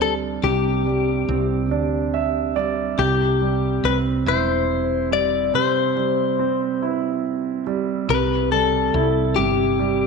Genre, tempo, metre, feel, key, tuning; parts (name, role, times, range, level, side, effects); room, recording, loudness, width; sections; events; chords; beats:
six-eight pop ballad; 47 BPM (dotted quarters); 6/8; straight; C major; A4 = 439 Hz
direct-recorded clean electric guitar; melody; 0.0-10.1 s; G4 to D5; -21 LUFS; left 10 dB
warm concert grand piano; accompaniment; 0.0-10.1 s; C3 to E5; -22 LUFS; right 10 dB
woody fretless electric bass; bass; 0.0-10.1 s; E1 to D2; -25 LUFS; equal
moderate echo chamber reverb, RT60 1.4 s, small room ambience; 1960s-style stereo with parts hard left and right; -18 LUFS; side -4 dB against mid
0.0-8.1 A section; 8.1-10.1 B section
grand piano fill 1.7-3.0
0.0 Gsus4/C; 3.0 C/E; 8.1 C
| 0.44 1.71 | 2.99 4.27 | 5.54 6.82 | 8.10 9.37